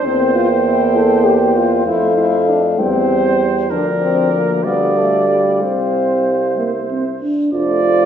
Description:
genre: classical, brass quintet.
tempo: 64 BPM (dotted quarters).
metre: 6/8.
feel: straight.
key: unclear.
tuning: A4 = 440 Hz.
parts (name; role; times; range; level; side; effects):
dark cornet; melody; 0.0-8.1 s; C5 to G5; -22 LUFS; left 6 dB; none.
warm trumpet; second line; 0.0-8.1 s; Bb4 to D5; -20 LUFS; right 6 dB; none.
clear French horn; accompaniment; 0.0-8.1 s; G3 to A4; -19 LUFS; left 4 dB; none.
dark euphonium; accompaniment; 0.0-8.1 s; F3 to F4; -19 LUFS; right 3 dB; none.
bright bass trombone; bass; 0.0-8.1 s; F1 to F2; -19 LUFS; equal; none.
room: wet recital hall reverb, RT60 1.3 s.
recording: heard from further back in the room.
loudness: -13 LUFS.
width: side -8 dB against mid.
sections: 0.0-7.5 A section.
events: none.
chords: 0.1 C7/E; 1.9 F; 2.8 C/E; 3.7 Bb/D; 4.6 G5/D; 5.6 C; 7.5 F.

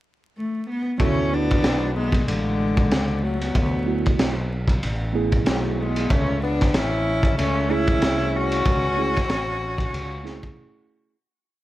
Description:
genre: hip hop, jazz-hop.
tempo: 94 BPM.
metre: 4/4.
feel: swing 57% on 16ths.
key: F# minor.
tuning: A4 = 441 Hz.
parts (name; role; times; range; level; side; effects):
dark cello; melody; 0.4-10.9 s; G#3 to F#4; -25 LUFS; equal; none.
breathy tenor saxophone; second line; 1.0-10.9 s; D3 to C#4; -29 LUFS; left 6 dB; none.
mellow tine electric piano; accompaniment; 1.0-11.2 s; A3 to G#4; -26 LUFS; right 6 dB; medium stereo tremolo.
fretless electric bass; bass; 1.0-10.5 s; A1 to D2; -27 LUFS; equal; none.
crunchy breakbeat drum kit; drums; 1.0-10.6 s; hi-hat, kick drum, ride cymbal, snare drum; -24 LUFS; equal; none.
room: light reverb.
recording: vinyl crackle.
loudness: -20 LUFS.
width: side -15 dB against mid.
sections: 0.0-1.0 pickup bar; 1.0-11.2 head.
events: fade-out 8.7-11.2; break 10.6-11.2.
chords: 0.0 N.C.; 1.0 D6; 6.1 F#m9.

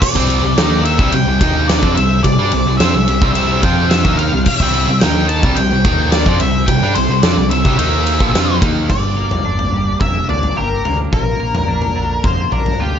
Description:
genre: quiet-loud alternative rock.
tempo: 108 BPM.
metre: 4/4.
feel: straight.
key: unclear.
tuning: A4 = 438 Hz.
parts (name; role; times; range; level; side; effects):
octave-fuzz lead guitar; melody; 0.0-13.0 s; G4 to A5; -19 LUFS; left 2 dB; distortion, tape echo.
twelve-string electric guitar; arpeggios; 0.0, 8.9-13.0 s; G2 to G4; -24 LUFS; right 6 dB; analog chorus.
huge arena drum kit; drums; 0.0-12.8 s; crash cymbal, kick drum, ride cymbal, snare drum, toms; -16 LUFS; equal; none.
distorted electric guitar; riff; 0.1-8.9 s; Bb2 to F4; -17 LUFS; equal; overdrive.
overdriven picked electric bass; bass; 0.2-13.0 s; F1 to G2; -18 LUFS; equal; none.
room: little or no reverb.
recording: nothing above 7.7 kHz.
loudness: -12 LUFS.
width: side -8 dB against mid.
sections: 0.0-8.9 A section; 8.9-13.0 B section.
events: none.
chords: 0.0 C; 8.9 Gm; 11.1 Bb.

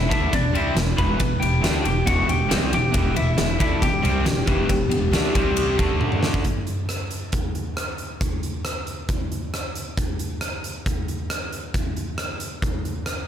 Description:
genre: quiet-loud alternative rock.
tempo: 137 BPM.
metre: 4/4.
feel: straight.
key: E minor.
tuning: A4 = 440 Hz.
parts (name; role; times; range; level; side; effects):
lightly driven lead guitar; melody; 0.0-6.0 s; D4 to B5; -25 LUFS; left 2 dB; slapback echo.
cranked stack guitar; riff; 0.0-6.4 s; E2 to D4; -24 LUFS; equal; overdrive, slapback echo.
upright bass; bass; 0.0-6.4 s; E1 to D2; -26 LUFS; equal; none.
huge arena drum kit; drums; 0.1-13.2 s; hi-hat, kick drum, ride cymbal, rim click, snare drum, toms; -24 LUFS; equal; none.
room: moderate scoring stage reverb, RT60 1.6 s, studio reverb.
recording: big arena sound.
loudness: -20 LUFS.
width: side -9 dB against mid.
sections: 0.0-6.4 A section; 6.4-13.3 B section.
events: drum fill 6.0-6.4.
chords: 0.0 Em; 5.3 C5; 5.8 D5; 6.4 N.C..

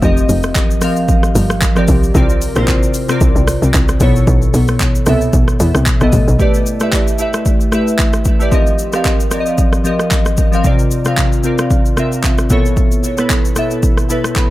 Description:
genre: amapiano.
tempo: 113 BPM.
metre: 4/4.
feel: swing 55% on 16ths.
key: unclear.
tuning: A4 = 438 Hz.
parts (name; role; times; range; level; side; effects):
glassy digital keys; accompaniment; 0.0-14.5 s; B2 to B5; -16 LUFS; left 1 dB; chorus, tape echo.
tight log drum bass; bass; 0.0-6.4 s; F1 to E2; -15 LUFS; equal; none.
deep house drum kit; drums; 0.0-14.5 s; handclaps, hi-hat, kick drum, rim click, shaker; -14 LUFS; equal; none.
room: little or no reverb.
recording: echo-heavy mix.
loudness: -11 LUFS.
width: side -16 dB against mid.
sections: 0.0-6.4 A section; 6.4-14.5 B section.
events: drop 0.0-6.4; synth keys fill 14.1-14.5.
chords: 0.0 F9sus4; 2.1 C9sus4; 4.0 B9sus4; 6.4 A9sus4; 8.5 F9sus4; 10.6 C9sus4; 12.5 B9sus4.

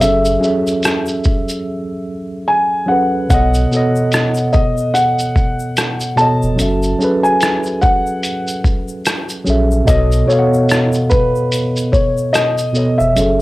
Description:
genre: lo-fi hip hop.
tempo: 73 BPM.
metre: 4/4.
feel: swing 58% on 16ths.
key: unclear.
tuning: A4 = 440 Hz.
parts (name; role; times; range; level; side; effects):
felt-muted upright piano; melody; 0.0-13.4 s; B4 to A5; -17 LUFS; left 1 dB; low-pass filter, plate reverb.
mellow tine electric piano; accompaniment; 0.0-13.4 s; B2 to F#5; -16 LUFS; right 1 dB; medium stereo tremolo, cassette tape, low-pass filter.
warm sub bass; bass; 0.0-13.4 s; E#1 to B1; -17 LUFS; equal; tube saturation.
lo-fi sampler-style drum kit; drums; 0.0-13.4 s; hi-hat, kick drum, rim click, shaker; -17 LUFS; equal; cassette tape.
egg shaker; percussion; 0.0-13.4 s; none; -34 LUFS; left 5 dB; none.
room: moderate studio reverb, RT60 0.5 s.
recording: home recording on cassette.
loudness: -13 LUFS.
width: side -18 dB against mid.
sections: 0.0-13.4 A section.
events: break 1.7-3.3.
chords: 0.0 F#m7; 3.3 B9; 6.6 F#m7; 9.9 B9.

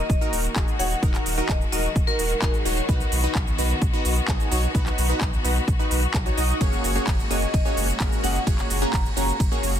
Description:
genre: EDM, festival progressive house.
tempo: 129 BPM.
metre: 4/4.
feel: straight.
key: unclear.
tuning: A4 = 440 Hz.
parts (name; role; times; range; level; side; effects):
vibraphone with hard mallets; melody; 0.0-2.5, 7.3-9.3 s; Bb4 to Bb5; -30 LUFS; left 1 dB; digital delay.
clear symphonic string section; sustained chords; 0.0-9.8 s; Bb2 to Gb4; -31 LUFS; left 3 dB; sidechain pumping.
saturated sub bass; bass; 0.1-9.8 s; Eb1 to B1; -26 LUFS; equal; sidechain pumping.
big-room dance drum kit; drums; 0.1-9.8 s; handclaps, hi-hat, ride cymbal, shaker; -30 LUFS; right 2 dB; none.
electronic kick drum; drums; 0.1-9.5 s; none; -23 LUFS; equal; none.
supersaw stab; riff; 0.2-9.7 s; Bb3 to D#5; -28 LUFS; equal; sidechain pumping, digital delay.
room: digital ambience.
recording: dense, heavily limited modern master.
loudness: -20 LUFS.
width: side -10 dB against mid.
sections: 0.0-9.8 A section.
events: none.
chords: 0.0 Ebm; 2.9 B; 6.6 Gbadd9.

